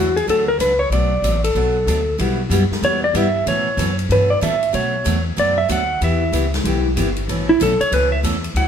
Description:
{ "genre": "country, western swing", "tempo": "188 BPM", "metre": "4/4", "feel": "swing 63% on 8ths", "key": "unclear", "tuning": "A4 = 442 Hz", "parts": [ { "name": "clean lap steel guitar", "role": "melody", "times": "0.0-8.7 s", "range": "E4 to F#5", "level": "-18 LUFS", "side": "equal", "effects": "none" }, { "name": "picked steel-string acoustic guitar", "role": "accompaniment", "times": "0.0-8.7 s", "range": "B2 to A4", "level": "-23 LUFS", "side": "right 1 dB", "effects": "none" }, { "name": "upright bass", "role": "bass", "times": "0.0-8.7 s", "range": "G1 to B2", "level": "-21 LUFS", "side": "left 1 dB", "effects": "none" }, { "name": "swinging big-band drum kit", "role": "drums", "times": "0.2-8.7 s", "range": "hi-hat, ride cymbal, snare drum", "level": "-28 LUFS", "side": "left 1 dB", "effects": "none" } ], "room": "moderate stone room reverb, RT60 1.0 s", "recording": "band playing live in one room", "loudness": "-16 LUFS", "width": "side -8 dB against mid", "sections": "0.0-8.7 A section", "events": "electric slide guitar solo 0.0-8.7", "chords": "0.0 D; 0.9 Bm7; 2.2 Emadd9/B; 3.5 Aadd9; 4.7 Bm7; 6.0 Em; 7.3 Aadd9", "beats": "0.28 0.59 | 0.91 1.23 1.55 1.87 | 2.19 2.51 2.83 3.15 | 3.47 3.78 4.10 4.42 | 4.74 5.06 5.38 5.69 | 6.01 6.33 6.65 6.97 | 7.28 7.60 7.92 8.24 | 8.55" }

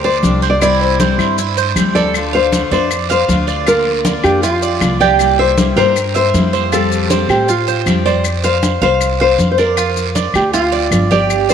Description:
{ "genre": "latin, Cuban son and guajira", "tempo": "157 BPM", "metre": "4/4", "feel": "straight", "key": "F major", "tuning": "A4 = 440 Hz", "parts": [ { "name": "nylon-string guitar", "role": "melody", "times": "0.0-11.5 s", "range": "F4 to D5", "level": "-15 LUFS", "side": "left 2 dB", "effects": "none" }, { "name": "Cuban tres", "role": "arpeggios", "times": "0.0-11.5 s", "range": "E4 to F5", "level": "-18 LUFS", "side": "right 10 dB", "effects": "slapback echo" }, { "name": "upright bass", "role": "bass", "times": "0.0-11.5 s", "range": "G1 to A2", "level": "-20 LUFS", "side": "equal", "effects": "none" }, { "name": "congas", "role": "percussion", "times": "0.0-11.5 s", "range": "none", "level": "-19 LUFS", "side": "left 1 dB", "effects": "none" }, { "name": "picked steel-string acoustic guitar", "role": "accompaniment", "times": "0.2-8.2 s", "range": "C3 to G4", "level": "-21 LUFS", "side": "left 9 dB", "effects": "none" }, { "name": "guiro", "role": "percussion", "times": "0.2-11.5 s", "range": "none", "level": "-27 LUFS", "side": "right 13 dB", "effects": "none" }, { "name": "maracas", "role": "percussion", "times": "0.2-11.5 s", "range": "none", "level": "-28 LUFS", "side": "left 13 dB", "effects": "none" }, { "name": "claves", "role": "percussion", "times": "0.6-11.5 s", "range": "none", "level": "-27 LUFS", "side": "left 12 dB", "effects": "none" } ], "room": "moderate plate reverb, RT60 3.3 s", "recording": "1960s-style stereo with parts hard left and right", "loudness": "-11 LUFS", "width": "side -8 dB against mid", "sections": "0.0-8.2 A section; 8.2-11.5 A section", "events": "none", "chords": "0.0 Gm; 0.6 C; 2.1 Dm; 3.7 Bb/D; 5.2 C7; 6.7 Fadd9; 8.2 F5; 9.8 Bb", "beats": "0.23 | 0.61 1.00 1.38 1.76 | 2.14 2.53 2.91 3.29 | 3.67 4.05 4.44 4.82 | 5.20 5.58 5.96 6.34 | 6.72 7.11 7.49 7.87 | 8.25 8.63 9.01 9.39 | 9.77 10.15 10.54 10.92 | 11.30" }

